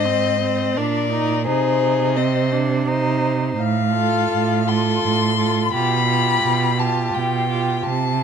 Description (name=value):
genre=classical, slow romantic movement for string quartet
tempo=85 BPM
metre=3/4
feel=rubato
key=unclear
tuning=A4 = 439 Hz
part: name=dark violin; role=melody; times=0.0-8.2 s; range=C5 to C6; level=-21 LUFS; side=left 8 dB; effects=none
part: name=rich violin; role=second line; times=0.0-8.2 s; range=G4 to C5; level=-26 LUFS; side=left 2 dB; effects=none
part: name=rich viola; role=accompaniment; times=0.0-8.2 s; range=C4 to F4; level=-25 LUFS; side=right 3 dB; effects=none
part: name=rich cello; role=bass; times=0.0-8.2 s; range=Ab2 to C3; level=-21 LUFS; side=right 6 dB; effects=none
room=little or no reverb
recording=close, detailed microphones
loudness=-17 LUFS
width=side -7 dB against mid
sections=0.0-8.2 A section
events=none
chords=0.0 Ab; 1.5 Ab/C; 3.6 F/A; 5.7 G7/B